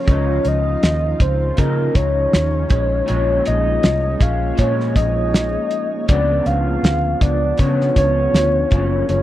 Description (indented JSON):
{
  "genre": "indie pop, bedroom pop",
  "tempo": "80 BPM",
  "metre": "4/4",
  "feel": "swing 55% on 16ths",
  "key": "unclear",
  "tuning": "A4 = 439 Hz",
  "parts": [
    { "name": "soft octave-layered synth lead", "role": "melody", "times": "0.0-9.2 s", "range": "Bb4 to F5", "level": "-20 LUFS", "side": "equal", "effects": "wide subtle chorus, slapback echo" },
    { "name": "electric guitar through a small old amp", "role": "accompaniment", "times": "0.0-9.2 s", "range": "Gb2 to Eb4", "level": "-24 LUFS", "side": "left 2 dB", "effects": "analog chorus, warbly pitch drift" },
    { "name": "shimmering ambient pad", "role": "sustained chords", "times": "0.0-9.2 s", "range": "Db3 to Db5", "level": "-28 LUFS", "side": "left 1 dB", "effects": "chorus, built-in reverb" },
    { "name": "vintage muted fingered electric bass", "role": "bass", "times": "0.1-9.2 s", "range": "Gb1 to Db3", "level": "-20 LUFS", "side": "equal", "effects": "none" },
    { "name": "cloth-damped thuddy drum kit", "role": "drums", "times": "0.1-9.2 s", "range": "hi-hat, kick drum, snare drum", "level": "-16 LUFS", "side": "equal", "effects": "none" }
  ],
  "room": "little or no reverb",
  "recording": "dry, close 1970s-style studio recording",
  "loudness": "-15 LUFS",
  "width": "side -14 dB against mid",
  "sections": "0.0-9.2 A section",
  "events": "none",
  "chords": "0.1 Dbadd9; 2.7 Bbm7; 6.1 Db7b9; 8.7 Gbmaj7"
}